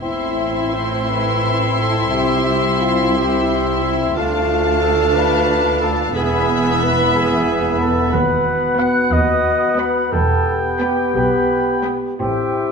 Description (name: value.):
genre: classical, slow romantic movement for symphony orchestra.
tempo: 55-62 BPM (dotted quarters).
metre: 6/8.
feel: rubato.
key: A minor, E minor from 8.1 s.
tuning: A4 = 441 Hz.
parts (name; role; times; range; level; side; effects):
warm studio violin section; melody; 0.0-12.1 s; A5 to C6; -26 LUFS; left 4 dB; none.
dark clarinet; second line; 0.0-12.7 s; E4 to F#5; -22 LUFS; left 2 dB; none.
hollow small flute group; second line; 0.0-12.7 s; E5 to F#6; -25 LUFS; left 2 dB; none.
rich studio violin section; second line; 0.0-12.1 s; E5 to G5; -27 LUFS; left 4 dB; none.
warm oboe; second line; 0.0-12.7 s; E5 to G5; -26 LUFS; right 1 dB; none.
mellow bassoon; accompaniment; 0.0-12.7 s; A3 to C4; -23 LUFS; right 2 dB; none.
rich studio viola section; accompaniment; 0.0-12.1 s; B3 to E4; -26 LUFS; right 1 dB; none.
warm French horn section; sustained chords; 0.0-12.7 s; A3 to G4; -24 LUFS; left 2 dB; none.
warm studio cello section; bass; 0.0-12.7 s; C2 to B2; -24 LUFS; right 2 dB; none.
warm studio double bass section; bass; 0.0-12.7 s; E1 to D#2; -26 LUFS; right 2 dB; none.
room: wet scoring stage reverb, RT60 1.8 s.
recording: minimal, uncompressed stereo recording.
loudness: -15 LUFS.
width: side -5 dB against mid.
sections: 0.0-12.7 A section.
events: none.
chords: 0.0 Am; 2.1 C; 4.2 Dm; 6.2 E; 8.1 B/D#; 10.1 Em; 12.2 Am7.